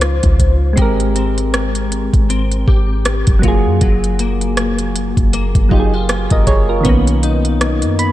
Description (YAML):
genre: contemporary R&B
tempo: 79 BPM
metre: 4/4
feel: swing 58% on 16ths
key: unclear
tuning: A4 = 440 Hz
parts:
  - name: soft electric-piano-like synth keys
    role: accompaniment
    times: 0.0-8.1 s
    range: Eb3 to Cb6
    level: -19 LUFS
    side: right 2 dB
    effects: chorus
  - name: direct-recorded clean electric guitar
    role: arpeggios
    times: 0.0-8.1 s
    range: Gb3 to C5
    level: -22 LUFS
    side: left 7 dB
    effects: ensemble chorus, tape echo
  - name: clean 808-style bass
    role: bass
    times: 0.0-8.1 s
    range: Gb1 to Gb2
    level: -16 LUFS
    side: equal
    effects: none
  - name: smooth R&B drum kit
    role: drums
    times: 0.0-8.1 s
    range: hi-hat, kick drum, rim click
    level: -16 LUFS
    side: equal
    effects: none
room: digital ambience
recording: dark, warm production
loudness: -12 LUFS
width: side -14 dB against mid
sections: 0.0-8.1 A section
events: synth keys fill 7.6-8.1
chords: 0.0 Dbmaj9; 0.8 Abmaj9; 3.4 Gbmaj9; 6.9 Cbmaj9